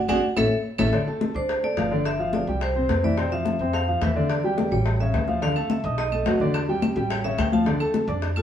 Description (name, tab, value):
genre	Afro-Cuban jazz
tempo	214 BPM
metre	4/4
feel	straight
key	D minor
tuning	A4 = 438 Hz
part	vibraphone with medium hard mallets	melody	0.1-8.4 s	F4 to A5	-28 LUFS	equal	none
part	warm grand piano	accompaniment	0.1-8.4 s	C3 to Eb6	-25 LUFS	equal	none
part	upright bass	bass	0.1-8.4 s	G1 to F2	-28 LUFS	equal	none
part	bongos	percussion	0.1-8.4 s	none	-32 LUFS	left 4 dB	none
part	claves	percussion	0.1-0.9, 5.6-8.4 s	none	-36 LUFS	right 2 dB	none
part	congas	percussion	0.1-8.4 s	none	-27 LUFS	left 3 dB	none
room	wet stone room reverb, RT60 1.1 s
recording	band playing live in one room, small room ambience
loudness	-21 LUFS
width	side -9 dB against mid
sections	0.9-8.4 A section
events	band accent 0.0-0.9; drum fill 0.1-0.9; vibraphone solo 0.9-8.4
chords	0.4 A; 0.9 Dm7; 2.1 G5; 2.6 C; 3.2 F5; 4.3 A7sus4; 4.9 A7; 5.4 Dm; 6.0 B7; 6.5 A7sus4; 7.1 A7; 7.7 Dm